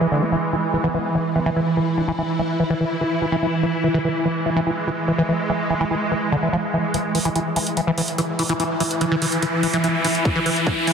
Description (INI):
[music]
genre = psychedelic trance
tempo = 145 BPM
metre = 4/4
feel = straight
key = E major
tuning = A4 = 441 Hz
[part]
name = swarming drone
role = sustained chords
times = 0.0-10.9 s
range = E3 to E4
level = -22 LUFS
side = right 1 dB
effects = built-in reverb, sidechain pumping
[part]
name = liquid acid bass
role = riff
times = 0.0-10.9 s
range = D3 to F4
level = -22 LUFS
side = equal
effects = phaser, auto-pan, sidechain pumping, dub echo
[part]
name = resonant blip pluck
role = second line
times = 0.8-2.6 s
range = E3 to E4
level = -34 LUFS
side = right 1 dB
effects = phaser, sidechain pumping, high-pass filter, dub echo
[part]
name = electronic hi-hat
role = drums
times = 6.9-10.9 s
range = none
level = -26 LUFS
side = right 3 dB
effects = none
[part]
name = riser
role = sound effects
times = 8.1-10.9 s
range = none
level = -27 LUFS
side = right 1 dB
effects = none
[part]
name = electronic kick drum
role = drums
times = 10.3-10.7 s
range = none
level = -22 LUFS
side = left 1 dB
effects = none
[sound]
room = wet lush hall reverb, RT60 1.8 s, digital ambience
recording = dense, heavily limited modern master, high-pass filter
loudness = -19 LUFS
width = side -6 dB against mid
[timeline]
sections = 0.0-6.9 A section; 6.9-10.9 B section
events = build-up 6.9-10.9; filter sweep on acid bass 6.9-10.9; filter sweep 6.9-10.9; riser 8.1-10.9; drum fill 10.3-10.9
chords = 0.0 E; 6.9 N.C.